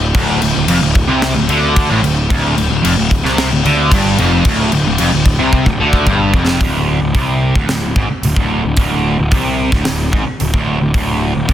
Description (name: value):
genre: hard rock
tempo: 111 BPM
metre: 4/4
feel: straight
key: D minor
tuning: A4 = 439 Hz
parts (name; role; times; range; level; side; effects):
- distorted electric guitar; riff; 0.0-6.6 s; D2 to D3; -18 LUFS; left 2 dB; distortion
- sludgy distorted guitar; riff; 0.0-11.5 s; D2 to D3; -16 LUFS; right 1 dB; overdrive
- fuzz picked electric bass; bass; 0.0-11.5 s; D1 to D2; -18 LUFS; equal; overdrive
- tight metal drum kit; drums; 0.1-11.5 s; crash cymbal, hi-hat, kick drum, snare drum; -16 LUFS; equal; none
room: small room ambience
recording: dense, heavily limited modern master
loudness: -11 LUFS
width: side -11 dB against mid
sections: 0.0-6.6 A section; 6.6-11.5 B section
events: drum fill 5.5-6.6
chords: 0.0 Dm; 6.6 N.C.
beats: | 0.15 0.69 1.23 1.77 | 2.31 2.84 3.38 3.92 | 4.46 5.00 5.53 6.07 | 6.61 7.15 7.69 8.23 | 8.78 9.32 9.86 10.40 | 10.95 11.49